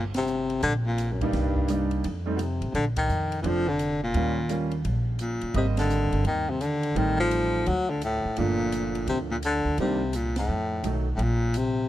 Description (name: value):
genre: jazz, small-group swing and bop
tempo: 170 BPM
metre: 4/4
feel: swing 64% on 8ths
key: G minor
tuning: A4 = 440 Hz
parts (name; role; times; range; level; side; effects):
- breathy baritone saxophone; melody; 0.0-11.9 s; F#2 to F#3; -27 LUFS; left 2 dB; none
- upright bass; bass; 0.0-11.8 s; F1 to F2; -28 LUFS; equal; none
- open jazz drum kit; drums; 0.1-11.6 s; hi-hat, kick drum, ride cymbal, snare drum; -39 LUFS; equal; none
- bright grand piano; accompaniment; 1.2-11.0 s; Eb3 to Eb5; -31 LUFS; right 3 dB; none
room: little or no reverb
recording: dark, warm production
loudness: -24 LUFS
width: side -13 dB against mid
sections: 0.0-11.2 A section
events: band accent 0.1, 2.9, 5.7, 10.3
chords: 0.0 Gm; 1.3 Cm7; 2.0 F7; 2.7 Bbmaj7; 4.2 Eb7; 5.6 Abmaj7; 7.0 Am7b5; 7.7 D5; 8.4 Gm7; 9.8 Cm7; 10.5 F7b9; 11.2 Bbsus2